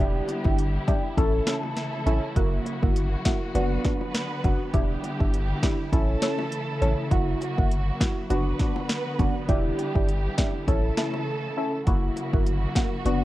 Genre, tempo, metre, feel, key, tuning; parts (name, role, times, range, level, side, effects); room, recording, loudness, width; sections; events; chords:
dancehall; 101 BPM; 4/4; swing 56% on 16ths; A4 = 440 Hz
deep mellow chord stab; accompaniment; 0.0-13.2 s; A#3 to A4; -28 LUFS; equal; chorus, phaser
warm studio string section; sustained chords; 0.0-13.2 s; C#3 to B4; -32 LUFS; equal; sidechain pumping
punchy sub bass; bass; 0.0-13.2 s; E1 to A1; -26 LUFS; equal
afro-pop drum kit; drums; 0.3-13.2 s; hi-hat, kick drum, snare drum; -25 LUFS; equal
bongos; percussion; 0.3-13.2 s; -37 LUFS; left 3 dB
digital ambience; worn, warbling old tape, cassette tape, warbly pitch drift; -23 LUFS; side -16 dB against mid
0.0-11.9 A section; 11.9-13.2 A section
break 11.3-11.9
0.0 Em7; 1.2 A; 2.4 F#7; 3.5 Bm/F#; 4.7 Em7; 5.9 A; 7.1 F#7; 8.3 Bm/F#; 9.5 Em7; 10.7 A; 11.9 F#7